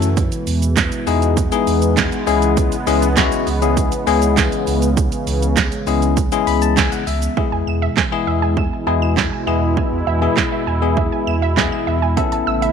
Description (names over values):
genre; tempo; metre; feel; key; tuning
dance-pop; 100 BPM; 4/4; straight; unclear; A4 = 440 Hz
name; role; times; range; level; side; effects
bell-like tine electric piano; accompaniment; 0.0-12.7 s; G#3 to B5; -20 LUFS; left 11 dB; sidechain pumping
sweeping resonant pad; sustained chords; 0.0-12.7 s; B2 to E4; -22 LUFS; right 2 dB; chorus, sidechain pumping
saturated sub bass; bass; 0.0-12.7 s; A1 to F#2; -20 LUFS; right 1 dB; sidechain pumping
punchy analog drum machine; drums; 0.0-12.7 s; handclaps, hi-hat, kick drum, shaker, snare drum; -20 LUFS; right 4 dB; none
wide unison pluck; arpeggios; 7.4-12.7 s; E5 to E7; -25 LUFS; right 10 dB; sidechain pumping, tape echo
room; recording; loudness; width
light reverb, digital ambience; 1960s-style stereo with parts hard left and right; -15 LUFS; side -7 dB against mid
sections
0.0-7.4 A section; 7.4-12.7 B section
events
tine electric piano fill 6.2-7.4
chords
0.2 Emaj7; 2.3 C#m7; 7.4 E; 12.2 Aadd9